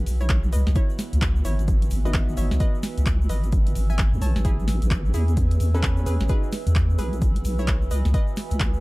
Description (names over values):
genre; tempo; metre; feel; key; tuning
UK garage, two-step garage; 130 BPM; 4/4; swing 62% on 16ths; C# minor; A4 = 436 Hz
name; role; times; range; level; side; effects
airy breathy pad; sustained chords; 0.0-8.8 s; E3 to B4; -40 LUFS; right 3 dB; chorus, sidechain pumping
deep soft wobble bass; bass; 0.0-8.8 s; G#1 to E2; -22 LUFS; equal; chorus
deep dark ambient pad; texture; 0.0-8.8 s; B4 to E6; -38 LUFS; right 4 dB; chorus, built-in reverb, sidechain pumping
punchy analog drum machine; drums; 0.1-8.7 s; handclaps, hi-hat, snare drum; -31 LUFS; equal; overdrive
tube shaker; percussion; 0.1-8.8 s; none; -45 LUFS; left 3 dB; none
hollow square pluck; melody; 0.2-8.3 s; C#4 to A5; -36 LUFS; equal; chorus, dub echo
electronic kick drum; drums; 0.3-8.7 s; none; -23 LUFS; equal; overdrive
warm grand piano; stabs; 2.1-6.5 s; B3 to B4; -34 LUFS; equal; dub echo
room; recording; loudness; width
little or no reverb; dark, warm production; -20 LUFS; side -22 dB against mid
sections
0.0-8.8 A section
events
none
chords
0.0 E; 0.5 C#m11; 4.4 Amaj7; 6.3 E; 7.9 C#m11